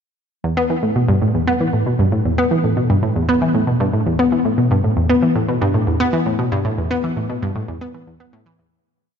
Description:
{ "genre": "ambient", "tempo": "116 BPM", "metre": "4/4", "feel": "straight", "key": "E minor", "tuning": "A4 = 442 Hz", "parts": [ { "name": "analog pluck", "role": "solo", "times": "0.4-8.7 s", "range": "E2 to B3", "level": "-15 LUFS", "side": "equal", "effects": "chorus, analog delay" } ], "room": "wet lush hall reverb, RT60 2.7 s", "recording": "nothing above 7.6 kHz", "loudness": "-15 LUFS", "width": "side -7 dB against mid", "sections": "0.4-8.7 A section", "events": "fade-out 6.0-8.7", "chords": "none" }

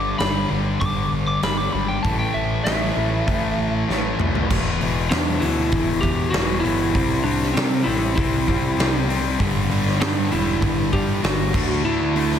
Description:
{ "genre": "quiet-loud alternative rock", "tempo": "98 BPM", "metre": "4/4", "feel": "straight", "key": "E minor", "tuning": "A4 = 440 Hz", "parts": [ { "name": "lightly driven lead guitar", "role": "melody", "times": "0.0-12.4 s", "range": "C4 to D6", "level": "-24 LUFS", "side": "right 1 dB", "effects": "slapback echo" }, { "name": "thick fuzz guitar", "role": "riff", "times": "0.0-12.4 s", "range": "E2 to D4", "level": "-24 LUFS", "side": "left 6 dB", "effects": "distortion" }, { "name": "thick fuzz guitar", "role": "riff", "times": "0.0-4.5, 9.4-12.4 s", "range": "G2 to D4", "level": "-28 LUFS", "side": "right 9 dB", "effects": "distortion" }, { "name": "growling picked electric bass", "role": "bass", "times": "0.0-12.4 s", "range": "E1 to C3", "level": "-26 LUFS", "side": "equal", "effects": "overdrive" }, { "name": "huge arena drum kit", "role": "drums", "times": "0.2-12.4 s", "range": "crash cymbal, hi-hat, kick drum, snare drum, toms", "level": "-24 LUFS", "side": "equal", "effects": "none" } ], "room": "moderate lush hall reverb, RT60 2.2 s", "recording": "big arena sound", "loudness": "-18 LUFS", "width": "side -9 dB against mid", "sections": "0.0-4.5 A section; 4.5-12.4 B section", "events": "lead electric guitar solo 0.0-4.5; drum fill 3.9-4.5", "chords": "0.0 G5; 2.0 A5; 4.5 E5; 7.0 C; 9.4 G5; 11.5 D" }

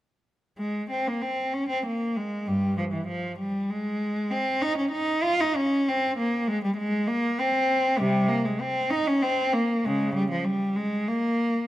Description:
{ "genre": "classical, baroque-style suite movement for unaccompanied cello", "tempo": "98 BPM", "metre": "3/4", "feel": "rubato", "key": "unclear", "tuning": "A4 = 442 Hz", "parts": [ { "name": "warm cello", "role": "solo", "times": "0.6-11.7 s", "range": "G2 to F4", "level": "-23 LUFS", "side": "equal", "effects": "none" } ], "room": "moderate recital hall reverb, RT60 1.6 s", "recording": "close, detailed microphones", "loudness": "-24 LUFS", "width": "side -14 dB against mid", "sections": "0.6-11.7 A section", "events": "none", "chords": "none" }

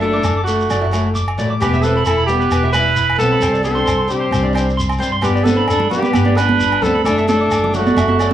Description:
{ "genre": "highlife guitar band", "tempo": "132 BPM", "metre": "4/4", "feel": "swing 53% on 16ths", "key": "G major", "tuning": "A4 = 440 Hz", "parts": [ { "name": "mellow trumpet", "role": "melody", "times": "0.0-8.3 s", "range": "F#4 to B4", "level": "-18 LUFS", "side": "right 1 dB", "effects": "cassette tape" }, { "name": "dark fiddle", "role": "second line", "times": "0.0-8.3 s", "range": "A3 to E4", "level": "-22 LUFS", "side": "left 3 dB", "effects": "cassette tape" }, { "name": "picked old ladder-braced acoustic guitar", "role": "accompaniment", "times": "0.0-8.3 s", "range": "F#3 to E4", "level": "-24 LUFS", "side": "left 3 dB", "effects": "cassette tape" }, { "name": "electric guitar at the edge of break-up", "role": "arpeggios", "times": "0.0-8.3 s", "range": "G4 to D6", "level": "-23 LUFS", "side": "right 4 dB", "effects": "wide subtle chorus, cassette tape, tape echo" }, { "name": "upright bass", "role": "bass", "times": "0.0-8.3 s", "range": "E1 to G2", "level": "-20 LUFS", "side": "equal", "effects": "none" }, { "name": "agogo bells", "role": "percussion", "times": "0.2-8.3 s", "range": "none", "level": "-27 LUFS", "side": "right 4 dB", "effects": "none" }, { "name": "shekere", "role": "percussion", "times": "0.2-8.3 s", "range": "none", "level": "-27 LUFS", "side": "left 2 dB", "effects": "none" }, { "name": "congas", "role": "percussion", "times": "5.5-8.3 s", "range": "none", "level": "-19 LUFS", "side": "right 4 dB", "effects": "none" } ], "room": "light reverb", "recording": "home recording on cassette, small room ambience", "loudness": "-13 LUFS", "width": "side -11 dB against mid", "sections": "0.0-8.3 A section", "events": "none", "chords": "0.0 Dadd9/F#; 1.6 Em; 3.4 Csus2; 5.2 G; 7.1 Dadd9/F#" }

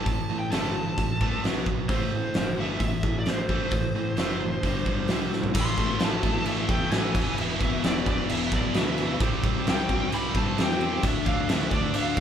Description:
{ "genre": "hard rock", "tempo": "131 BPM", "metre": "4/4", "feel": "straight", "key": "A minor", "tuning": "A4 = 441 Hz", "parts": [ { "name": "high-gain lead guitar", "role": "melody", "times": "0.0-12.2 s", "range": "C5 to C6", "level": "-32 LUFS", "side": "equal", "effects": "distortion" }, { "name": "crunchy overdriven guitar", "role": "riff", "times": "0.0-12.2 s", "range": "E2 to D4", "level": "-32 LUFS", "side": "left 7 dB", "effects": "none" }, { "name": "scooped high-gain guitar", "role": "riff", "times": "0.0-12.2 s", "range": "E2 to D4", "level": "-31 LUFS", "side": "right 6 dB", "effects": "distortion" }, { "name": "modern bright fingered electric bass", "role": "bass", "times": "0.0-12.2 s", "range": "E1 to A2", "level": "-34 LUFS", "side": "equal", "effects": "none" }, { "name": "big rock drum kit", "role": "drums", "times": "0.1-12.2 s", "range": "crash cymbal, hi-hat, kick drum, snare drum, toms", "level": "-26 LUFS", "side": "equal", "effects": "none" }, { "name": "overdriven tonewheel organ", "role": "sustained chords", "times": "5.6-12.2 s", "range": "A3 to F5", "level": "-42 LUFS", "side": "equal", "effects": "none" } ], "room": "moderate large studio reverb, RT60 1.1 s", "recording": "band playing live in one room", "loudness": "-23 LUFS", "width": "side -9 dB against mid", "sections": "0.0-5.6 A section; 5.6-12.2 B section", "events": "drum fill 5.3", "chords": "0.0 Am; 1.4 B5; 1.9 Am; 4.6 G5; 5.1 C5; 5.6 Am; 7.2 E5; 9.2 C; 11.0 Dm" }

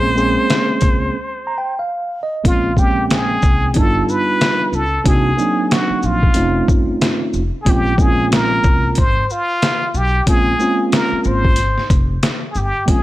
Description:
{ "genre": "hip hop, jazz-hop", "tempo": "92 BPM", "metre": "4/4", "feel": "swing 59% on 16ths", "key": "Bb dorian", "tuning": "A4 = 440 Hz", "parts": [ { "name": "trumpet with plunger mute", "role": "melody", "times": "0.0-13.0 s", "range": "F4 to C5", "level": "-19 LUFS", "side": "equal", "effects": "none" }, { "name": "mellow tine electric piano", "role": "accompaniment", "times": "0.0-13.0 s", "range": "Gb3 to Bb5", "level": "-19 LUFS", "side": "right 2 dB", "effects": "fast stereo tremolo" }, { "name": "upright bass", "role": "bass", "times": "0.0-13.0 s", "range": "F1 to Db2", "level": "-21 LUFS", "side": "equal", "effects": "none" }, { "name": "trip hop sampler-style drum kit", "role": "drums", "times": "0.2-13.0 s", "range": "hi-hat, kick drum, shaker, snare drum", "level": "-16 LUFS", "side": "equal", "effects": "none" } ], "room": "light reverb", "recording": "none", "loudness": "-14 LUFS", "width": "side -16 dB against mid", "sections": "0.0-2.4 A section; 2.4-12.9 B section", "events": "break 1.1-2.4; tine electric piano fill 1.1-2.4; muted trumpet solo 2.4-12.9", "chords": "0.0 Bbm9; 3.8 G7b13; 5.1 Cm7b5; 6.4 F7b13; 7.7 Bbm9" }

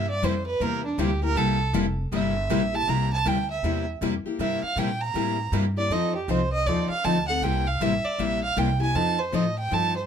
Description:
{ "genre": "acoustic string swing (jazz manouche)", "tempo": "158 BPM", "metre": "4/4", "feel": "swing 62% on 8ths", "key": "C mixolydian", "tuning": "A4 = 439 Hz", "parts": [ { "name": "dark violin", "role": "melody", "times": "0.0-10.1 s", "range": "D4 to Bb5", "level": "-27 LUFS", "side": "right 4 dB", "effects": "plate reverb" }, { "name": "picked steel-string acoustic guitar", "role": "accompaniment", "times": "0.0-9.9 s", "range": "C3 to A4", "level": "-27 LUFS", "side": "left 6 dB", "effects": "none" }, { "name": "picked steel-string acoustic guitar", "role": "accompaniment", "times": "0.0-9.9 s", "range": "C3 to A4", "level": "-32 LUFS", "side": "right 6 dB", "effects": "none" }, { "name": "upright bass", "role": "bass", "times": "0.0-10.1 s", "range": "F1 to Bb2", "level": "-28 LUFS", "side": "equal", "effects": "none" } ], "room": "moderate club ambience, RT60 0.5 s", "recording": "close, detailed microphones", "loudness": "-22 LUFS", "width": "side -8 dB against mid", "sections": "0.0-2.9 A section; 2.9-10.1 A section", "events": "violin solo 0.0-10.1", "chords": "0.0 C7; 5.9 F7; 7.4 C7; 9.0 F7" }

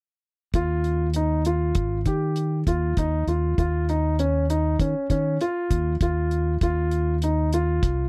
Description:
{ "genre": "progressive instrumental, band music in an uneven meter", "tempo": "99 BPM", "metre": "5/4", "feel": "straight", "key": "unclear", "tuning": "A4 = 440 Hz", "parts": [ { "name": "fingered electric bass", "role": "bass", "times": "0.5-8.1 s", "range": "Ab1 to Eb3", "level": "-26 LUFS", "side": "equal", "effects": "none" }, { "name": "deep reggae drum kit", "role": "drums", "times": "0.5-8.0 s", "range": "hi-hat, kick drum", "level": "-28 LUFS", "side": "equal", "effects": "none" }, { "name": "warm concert grand piano", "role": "arpeggios", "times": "0.6-8.0 s", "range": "Db4 to G4", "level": "-28 LUFS", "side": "equal", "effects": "none" } ], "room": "little or no reverb", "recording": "dry, close 1970s-style studio recording", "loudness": "-24 LUFS", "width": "mono", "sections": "0.5-8.1 A section", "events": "none", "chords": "0.5 F7sus2; 3.6 Dbadd9/Eb; 6.6 F5" }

